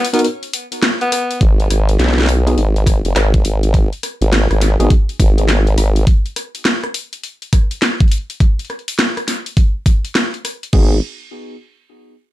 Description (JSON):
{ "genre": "glitch hop", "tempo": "103 BPM", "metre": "4/4", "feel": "swing 63% on 16ths", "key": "G# minor", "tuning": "A4 = 439 Hz", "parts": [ { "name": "raspy tenor saxophone", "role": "melody", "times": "0.0-1.4 s", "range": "B3", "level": "-21 LUFS", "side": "left 1 dB", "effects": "digital delay" }, { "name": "drum and bass drum kit", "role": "drums", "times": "0.0-10.7 s", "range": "hi-hat, rim click, snare drum", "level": "-18 LUFS", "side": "left 1 dB", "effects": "none" }, { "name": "tine electric piano", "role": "stabs", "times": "0.1-4.9, 10.7-11.0 s", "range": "B3 to A#4", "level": "-19 LUFS", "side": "equal", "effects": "sidechain pumping, digital delay" }, { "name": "formant-sweep wobble bass", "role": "bass", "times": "1.4-6.0, 10.7-11.0 s", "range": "F#1 to B1", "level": "-14 LUFS", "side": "equal", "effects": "chorus" }, { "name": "drum and bass drum kit", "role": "drums", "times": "1.4-10.9 s", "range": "crash cymbal, kick drum", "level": "-12 LUFS", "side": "equal", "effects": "none" } ], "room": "little or no reverb", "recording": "none", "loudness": "-13 LUFS", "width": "side -16 dB against mid", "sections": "0.0-1.4 A section; 1.4-10.7 B section; 10.7-12.3 C section", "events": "break 0.0-1.4; drop 0.0-1.4", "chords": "0.0 Bmaj7; 1.4 G#m; 6.1 N.C.; 10.7 G#m7" }